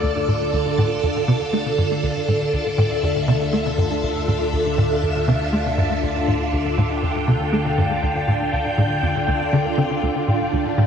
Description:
ambient, sequencer-driven space music; 120 BPM; 4/4; straight; D minor; A4 = 440 Hz
phased string machine; sustained chords; 0.0-10.9 s; D3 to G5; -21 LUFS; equal; ensemble chorus, phaser, shimmer reverb
warbly dusty pluck; arpeggios; 0.0-10.9 s; D3 to D5; -34 LUFS; left 1 dB
tight sequencer bass; riff; 0.0-10.9 s; D2 to A3; -21 LUFS; equal; ensemble chorus, ping-pong delay
analog drone; bass; 0.0-10.9 s; D2; -30 LUFS; equal; chorus
wet spring reverb, RT60 2.6 s; echo-heavy mix, cassette tape; -18 LUFS; side -7 dB against mid
0.0-10.9 A section
0.0 Dmadd9

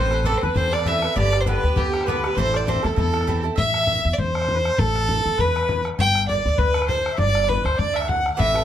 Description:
celtic folk, Celtic reel; 200 BPM; 4/4; swing 55% on 8ths; A dorian; A4 = 440 Hz
rich fiddle; melody; 0.0-8.6 s; G4 to G5; -22 LUFS; right 1 dB
accordion; second line; 0.0-8.6 s; G4 to G5; -29 LUFS; left 7 dB
bowl-back mandolin; second line; 0.0-8.6 s; G4 to G5; -32 LUFS; right 5 dB
Irish bouzouki; accompaniment; 0.0-3.6, 8.4-8.6 s; D3 to B4; -26 LUFS; right 4 dB
upright bass; bass; 0.0-8.6 s; G1 to E2; -24 LUFS; equal
bodhran; percussion; 0.1-8.6 s; -27 LUFS; left 2 dB
light reverb; -18 LUFS; side -10 dB against mid
0.0-3.6 A section; 3.6-8.6 A section
0.0 Amadd9; 1.2 G; 2.4 Am; 3.6 Amadd9; 6.0 G

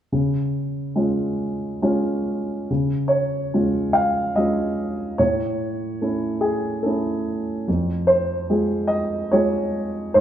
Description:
neoclassical minimalist piano; 72 BPM; 3/4; rubato; Db major; A4 = 441 Hz
dark grand piano; solo; 0.1-10.2 s; F2 to F5; -20 LUFS; equal
wet recital hall reverb, RT60 1.4 s; recorded in a church or concert hall; -20 LUFS; side -10 dB against mid
0.1-2.7 A section; 2.7-10.2 B section
0.1 Db; 5.2 A; 7.7 Fm

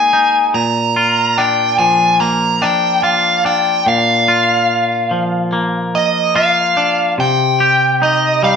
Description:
post-rock; 72 BPM; 4/4; straight; A4 = 440 Hz
nasal lead guitar with a parked wah; melody; 0.0-8.6 s; Eb5 to Bb5; -13 LUFS; left 1 dB; overdrive
twangy electric guitar; arpeggios; 0.0-8.6 s; Bb2 to Ab4; -16 LUFS; equal
wet studio reverb, RT60 0.9 s; band playing live in one room; -12 LUFS; side -6 dB against mid
0.0-8.6 A section
0.0 Absus2; 0.5 Bb; 7.2 Cm

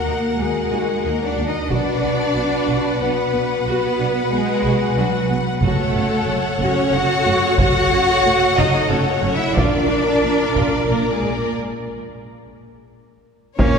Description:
cinematic, epic orchestral film score; 91 BPM; 3/4; straight; A4 = 438 Hz
warm studio violin section; melody; 0.0-13.8 s; F#4 to Gb5; -24 LUFS; left 4 dB
warm symphonic violin section; second line; 0.0-13.8 s; Bb4 to Gb5; -26 LUFS; left 2 dB
warm symphonic viola section; accompaniment; 0.0-11.6 s; A3 to Bb4; -26 LUFS; equal
warm French horn section; sustained chords; 0.0-13.8 s; Db4 to Db5; -25 LUFS; left 2 dB
clear symphonic cello section; bass; 0.0-13.8 s; Bb2 to Gb4; -22 LUFS; right 2 dB
warm symphonic double bass section; bass; 0.1-13.8 s; Gb1 to Eb2; -24 LUFS; right 2 dB
taiko ensemble; drums; 1.7-13.8 s; -24 LUFS; equal
bright trombone section; sustained chords; 13.6-13.8 s; F3 to Bb3; -23 LUFS; right 1 dB
pipe organ, trumpet; sustained chords; 13.6-13.8 s; Bb3 to F5; -23 LUFS; right 1 dB
warm trumpet; stabs; 13.6-13.8 s; Db5; -23 LUFS; right 3 dB
wet church reverb, RT60 3.1 s; recorded in a church or concert hall; -16 LUFS; side -6 dB against mid
0.0-13.6 A section
break 11.6-13.6; drum fill 12.6-13.6
0.0 Ebm; 1.7 Bm; 5.6 Gbm; 9.6 Bb

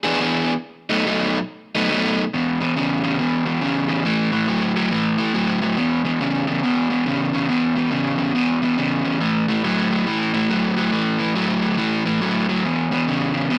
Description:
blues; 140 BPM; 4/4; swing 63% on 8ths; A4 = 440 Hz
overdriven semi-hollow guitar; solo; 0.0-13.6 s; E2 to G#4; -20 LUFS; equal
light reverb; -21 LUFS; mono
0.0-2.3 A section; 2.3-13.6 B section
0.0 E7; 0.6 B7; 2.3 E5; 4.1 A5; 5.8 E5; 9.2 A5; 12.6 E5

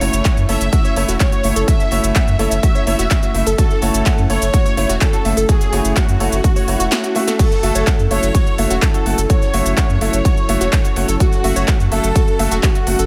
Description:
progressive house; 126 BPM; 4/4; straight; F# minor; A4 = 440 Hz
unison lead; melody; 0.0-13.1 s; F#4 to E5; -26 LUFS; equal; lush chorus, sidechain pumping, digital delay
bright symphonic violin section; second line; 0.0-13.1 s; F#4 to E5; -32 LUFS; equal; vintage 12-bit sampler grit, sidechain pumping
airy breathy pad; sustained chords; 0.0-13.1 s; F#3 to A4; -28 LUFS; equal; chorus, sidechain pumping
glassy wavetable pluck; arpeggios; 0.0-13.0 s; F#4 to F#5; -28 LUFS; equal; chorus, sidechain pumping, dub echo
bright grand piano; stabs; 0.0-13.0 s; A3 to F#5; -25 LUFS; equal; sidechain pumping, dub echo
saturated sub bass; bass; 0.0-13.1 s; E1 to F#2; -21 LUFS; equal; sidechain pumping
big-room dance drum kit; drums; 0.0-13.1 s; cabasa, crash cymbal, handclaps, hi-hat, snare drum; -26 LUFS; equal; sidechain pumping on hats, sidechain pumping on cymbals, sidechain pumping on perc
open jazz drum kit; drums; 0.0-13.0 s; hi-hat, ride cymbal, snare drum; -38 LUFS; equal
electronic kick drum; drums; 0.3-12.7 s; -17 LUFS; equal
studio ambience; faint mains hum; -16 LUFS; mono
0.0-13.1 A section
drum fill 6.9-7.4
0.0 F#m7

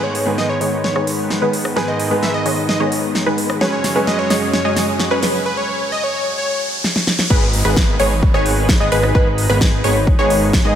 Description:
EDM, festival progressive house; 130 BPM; 4/4; straight; G# minor; A4 = 439 Hz
plucky unison lead; melody; 0.0-6.6 s; B4 to E5; -22 LUFS; left 1 dB; cassette tape, tape echo
bright concert grand piano; accompaniment; 0.0-7.3 s; G#2 to G#4; -24 LUFS; right 2 dB; vintage 12-bit sampler grit, sidechain pumping
lush unison pad; sustained chords; 0.0-10.8 s; F#2 to B4; -26 LUFS; equal; chorus, sidechain pumping
wide unison pluck; arpeggios; 0.0-10.7 s; B4 to D#5; -22 LUFS; equal; sidechain pumping, tape echo
supersaw stab; riff; 0.0-10.7 s; D#3 to D#5; -22 LUFS; equal; sidechain pumping, low-pass filter, tape echo
riser and downlifter; sound effects; 0.0-10.8 s; -28 LUFS; right 1 dB
big-room dance drum kit; drums; 0.1-10.6 s; crash cymbal, hi-hat, rim click, snare drum; -21 LUFS; equal
fat analog bass; bass; 7.3-10.7 s; G#1 to G#2; -19 LUFS; equal; sidechain pumping
electronic kick drum; drums; 7.3-10.6 s; -15 LUFS; equal
moderate lush hall reverb, RT60 2.0 s; -14 LUFS; side -9 dB against mid
0.0-7.3 A section; 7.3-10.8 B section
build-up 0.0-7.3; drum fill 0.0-5.5, 6.8-7.3; riser 0.0-7.3; filter sweep on supersaw synth 0.0-7.3; filter sweep on synth pluck 0.0-7.3; break 5.5-7.3; drop 7.3-10.8
0.0 G#m; 3.6 F#sus2; 7.3 G#m

